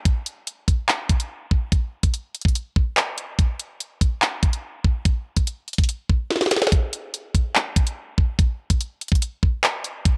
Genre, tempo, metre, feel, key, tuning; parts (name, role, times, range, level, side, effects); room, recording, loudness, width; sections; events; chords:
hip hop; 144 BPM; 4/4; half-time
drill drum kit; drums; 0.1-10.2 s; handclaps, hi-hat, kick drum, snare drum; -22 LUFS; equal
light reverb; dry, gritty hardware recording; -23 LUFS; mono
0.0-10.2 A section
drum fill 6.3-6.7